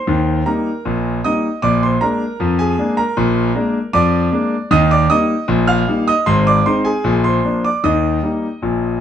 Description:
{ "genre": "ragtime piano", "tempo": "77 BPM", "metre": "2/4", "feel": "straight", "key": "Eb major", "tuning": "A4 = 442 Hz", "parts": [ { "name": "clear concert grand piano", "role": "solo", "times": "0.0-9.0 s", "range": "Ab1 to F6", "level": "-14 LUFS", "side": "equal", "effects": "none" } ], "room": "moderate studio reverb, RT60 0.5 s", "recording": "none", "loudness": "-14 LUFS", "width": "side -9 dB against mid", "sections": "0.0-9.0 A section", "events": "none", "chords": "0.0 Eb; 1.6 Bb7; 4.7 Eb; 6.3 Ab; 7.1 Bb7; 7.8 Eb" }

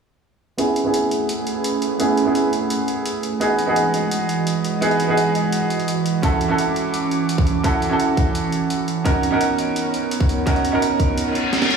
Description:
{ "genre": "liquid drum and bass", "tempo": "170 BPM", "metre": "4/4", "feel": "straight", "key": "A major", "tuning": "A4 = 441 Hz", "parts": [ { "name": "clear concert grand piano", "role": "accompaniment", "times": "0.6-11.8 s", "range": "B3 to A#4", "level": "-20 LUFS", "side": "right 2 dB", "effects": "low-pass filter, digital delay" }, { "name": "airy breathy pad", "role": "sustained chords", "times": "0.8-11.8 s", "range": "E3 to D6", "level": "-23 LUFS", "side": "right 3 dB", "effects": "chorus, sidechain pumping" }, { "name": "breakbeat sampler-style drum kit", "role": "drums", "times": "0.6-11.8 s", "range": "hi-hat, snare drum", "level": "-29 LUFS", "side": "right 1 dB", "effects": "none" }, { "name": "electronic kick drum", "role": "drums", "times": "6.2-11.1 s", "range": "none", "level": "-20 LUFS", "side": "equal", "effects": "none" }, { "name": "reverse cymbal", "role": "sound effects", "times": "11.3-11.8 s", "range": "none", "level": "-21 LUFS", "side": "left 3 dB", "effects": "none" } ], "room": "moderate plate reverb, RT60 1.5 s, digital ambience", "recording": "played on a big sound system in a bare room, large studio reverb, studio ambience", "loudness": "-17 LUFS", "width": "side -6 dB against mid", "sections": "0.6-11.8 A section", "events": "filter sweep on grand piano 0.6-11.8; reverse cymbal 11.3-11.8; drum fill 11.5", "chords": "0.6 Amaj9; 3.4 Emaj9; 6.2 Dmaj9; 9.1 Bmaj9" }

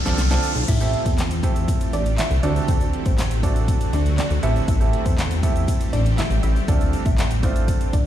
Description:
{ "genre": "dance-pop", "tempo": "120 BPM", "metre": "4/4", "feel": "straight", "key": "A minor", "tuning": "A4 = 439 Hz", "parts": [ { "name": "shimmering ambient pad", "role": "sustained chords", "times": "0.0-8.1 s", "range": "D3 to G4", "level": "-29 LUFS", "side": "left 1 dB", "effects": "chorus, built-in reverb, sidechain pumping" }, { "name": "chorused synth bass", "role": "bass", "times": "0.0-8.1 s", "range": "A1 to E2", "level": "-21 LUFS", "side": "equal", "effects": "sidechain pumping" }, { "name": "riser", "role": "sound effects", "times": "0.0-0.7 s", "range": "none", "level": "-29 LUFS", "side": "equal", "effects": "none" }, { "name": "clear grand piano", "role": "accompaniment", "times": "0.1-7.9 s", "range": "A3 to C5", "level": "-28 LUFS", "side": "right 6 dB", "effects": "none" }, { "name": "pop drum kit", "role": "drums", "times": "0.1-8.0 s", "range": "crash cymbal, handclaps, hi-hat, kick drum, snare drum", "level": "-22 LUFS", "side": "equal", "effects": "none" }, { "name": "egg shaker", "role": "percussion", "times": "0.1-8.0 s", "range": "none", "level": "-41 LUFS", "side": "left 7 dB", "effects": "none" }, { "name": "soft round pluck", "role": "melody", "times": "0.7-8.1 s", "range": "C4 to E5", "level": "-30 LUFS", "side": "equal", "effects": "chorus, sidechain pumping, ping-pong delay" } ], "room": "digital ambience", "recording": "played on a big sound system in a bare room, large studio reverb", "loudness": "-18 LUFS", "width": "side -11 dB against mid", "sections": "0.7-8.1 A section", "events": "drum fill 0.0-0.7; riser 0.0-0.7; drop 0.7-8.1", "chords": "0.0 Dm7; 0.7 Am7; 2.4 D7; 4.4 Am7; 6.7 Dm7" }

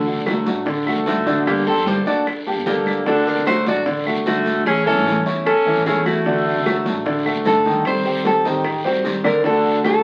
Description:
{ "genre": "latin, Cuban son and guajira", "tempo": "150 BPM", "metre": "4/4", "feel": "straight", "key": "unclear", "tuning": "A4 = 441 Hz", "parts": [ { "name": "nylon-string guitar", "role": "melody", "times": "0.0-10.0 s", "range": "F#4 to D5", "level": "-23 LUFS", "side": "equal", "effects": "none" }, { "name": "picked steel-string acoustic guitar", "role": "accompaniment", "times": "0.0-10.0 s", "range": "C3 to A4", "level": "-27 LUFS", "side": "equal", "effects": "none" }, { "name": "warm grand piano", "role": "arpeggios", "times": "0.0-10.0 s", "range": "D3 to Eb5", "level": "-25 LUFS", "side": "equal", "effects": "none" }, { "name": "upright bass", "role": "bass", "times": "0.0-9.8 s", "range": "G1 to D3", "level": "-34 LUFS", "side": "equal", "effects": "none" }, { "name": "congas", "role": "percussion", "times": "0.1-10.0 s", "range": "none", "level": "-31 LUFS", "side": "equal", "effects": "none" }, { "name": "bongos", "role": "percussion", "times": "0.3-10.0 s", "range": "none", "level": "-34 LUFS", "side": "equal", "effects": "none" }, { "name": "claves", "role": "percussion", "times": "0.3-10.0 s", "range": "none", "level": "-31 LUFS", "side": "equal", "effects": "none" }, { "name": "guiro", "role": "percussion", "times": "0.3-10.0 s", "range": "none", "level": "-35 LUFS", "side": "equal", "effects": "none" }, { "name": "clear trumpet", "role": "second line", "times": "1.1-7.4 s", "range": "A3 to G4", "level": "-25 LUFS", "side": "equal", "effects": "none" } ], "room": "wet studio ambience, RT60 0.5 s", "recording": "very old 78 rpm record, vinyl crackle", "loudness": "-19 LUFS", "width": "mono", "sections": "0.0-7.9 A section; 7.9-10.0 B section", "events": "none", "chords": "0.0 D; 1.5 Gmadd9; 3.1 D; 4.7 A; 6.3 D; 7.9 Cm; 9.4 D" }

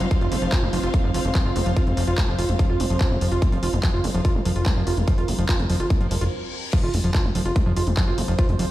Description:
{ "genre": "psychedelic trance", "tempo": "145 BPM", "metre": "4/4", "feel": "straight", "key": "unclear", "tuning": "A4 = 443 Hz", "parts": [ { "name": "evolving wavetable pad", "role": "sustained chords", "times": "0.0-8.7 s", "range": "C4 to C5", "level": "-31 LUFS", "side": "right 2 dB", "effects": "chorus, built-in reverb, sidechain pumping" }, { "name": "overdriven acid bass", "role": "riff", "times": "0.0-8.7 s", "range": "F3 to F4", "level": "-27 LUFS", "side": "right 1 dB", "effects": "distortion, auto-pan, sidechain pumping, dub echo" }, { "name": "plucky analog bass", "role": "bass", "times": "0.0-8.7 s", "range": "F1 to Gb1", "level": "-24 LUFS", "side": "equal", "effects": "none" }, { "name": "techno drum kit", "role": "drums", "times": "0.0-8.7 s", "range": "crash cymbal, handclaps, hi-hat", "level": "-32 LUFS", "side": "equal", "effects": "overdrive" }, { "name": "warm studio string section", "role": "texture", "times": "0.0-6.3 s", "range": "F4 to F5", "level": "-33 LUFS", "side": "left 1 dB", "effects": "sidechain pumping" }, { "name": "electronic kick drum", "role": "drums", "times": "0.1-8.5 s", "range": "none", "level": "-21 LUFS", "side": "equal", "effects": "none" }, { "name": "reverse cymbal", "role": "sound effects", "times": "6.1-6.7 s", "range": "none", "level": "-36 LUFS", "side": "left 6 dB", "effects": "none" } ], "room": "light reverb, digital ambience", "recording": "played on a big sound system in a bare room, stone room reverb", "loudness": "-19 LUFS", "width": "side -15 dB against mid", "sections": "0.0-6.7 A section; 6.7-8.7 B section", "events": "reverse cymbal 6.1-6.7; stop 6.3-6.7; drop 6.7-8.7", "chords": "0.0 F5" }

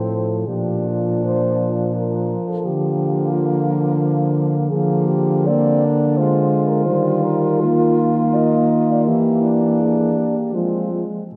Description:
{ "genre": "classical, lyrical piece for horn quartet", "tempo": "72-90 BPM", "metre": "3/4", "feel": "rubato", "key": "Bb major, Eb major from 4.7 s", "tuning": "A4 = 441 Hz", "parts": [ { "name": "dark French horn", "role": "melody", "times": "0.0-11.1 s", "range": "F4 to Eb5", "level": "-25 LUFS", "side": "equal", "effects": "none" }, { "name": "clear French horn", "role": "second line", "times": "0.0-11.0 s", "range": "Bb3 to F4", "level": "-27 LUFS", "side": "equal", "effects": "none" }, { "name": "mellow French horn", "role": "accompaniment", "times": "0.0-11.2 s", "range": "F3 to Bb3", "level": "-23 LUFS", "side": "equal", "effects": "none" }, { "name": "dark French horn", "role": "bass", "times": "0.0-11.0 s", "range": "A2 to F3", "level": "-23 LUFS", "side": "equal", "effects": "none" } ], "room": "wet church reverb, RT60 2.8 s", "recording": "dark, warm production", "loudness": "-18 LUFS", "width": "mono", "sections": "0.0-11.4 A section", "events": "none", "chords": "0.5 Bb; 2.7 Bb/D; 4.7 Bb7/D; 6.9 Eb; 9.1 Em7b5; 10.5 Fm" }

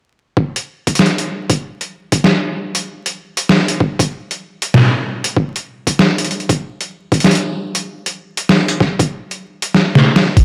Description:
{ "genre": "glitch hop", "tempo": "96 BPM", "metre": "4/4", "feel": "swing 61% on 16ths", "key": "none", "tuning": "none", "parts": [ { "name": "electronic kick drum", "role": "drums", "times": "0.4-10.4 s", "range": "none", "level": "-16 LUFS", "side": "equal", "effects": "overdrive, high-pass filter on kick, studio reverb" }, { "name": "boom bap sampler-style drum kit", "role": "drums", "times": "0.6-10.4 s", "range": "hi-hat, snare drum", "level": "-16 LUFS", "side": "equal", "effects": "overdrive, studio reverb" } ], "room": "wet plate reverb, RT60 1.6 s, digital ambience", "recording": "vinyl crackle", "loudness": "-16 LUFS", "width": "mono", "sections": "0.4-10.4 A section", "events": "drum fill 9.7-10.4", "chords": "none" }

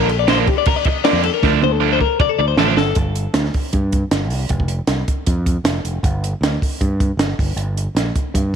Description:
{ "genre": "math rock and midwest emo", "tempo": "156 BPM", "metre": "4/4", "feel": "straight", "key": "G minor", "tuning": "A4 = 439 Hz", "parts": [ { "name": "twelve-string electric guitar", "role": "arpeggios", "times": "0.0-3.0 s", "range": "G4 to Eb5", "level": "-18 LUFS", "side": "left 11 dB", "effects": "none" }, { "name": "overdriven electric guitar", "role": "riff", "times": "0.0-2.8 s", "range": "D3 to D4", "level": "-20 LUFS", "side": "right 15 dB", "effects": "none" }, { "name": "growling fingered electric bass", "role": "bass", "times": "0.0-8.6 s", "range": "F1 to G2", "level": "-20 LUFS", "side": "right 1 dB", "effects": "overdrive" }, { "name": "compact cocktail drum kit", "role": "drums", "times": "0.1-8.4 s", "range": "crash cymbal, hi-hat, kick drum, snare drum, toms", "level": "-19 LUFS", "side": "right 1 dB", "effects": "none" } ], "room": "light reverb", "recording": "1960s-style stereo with parts hard left and right", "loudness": "-15 LUFS", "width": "side -8 dB against mid", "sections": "0.0-3.0 A section; 3.0-8.6 B section", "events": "drum fill 1.4-3.0", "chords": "0.0 Bb; 1.4 Dm7; 3.0 G5; 4.5 F5; 6.0 G5; 7.4 Gm" }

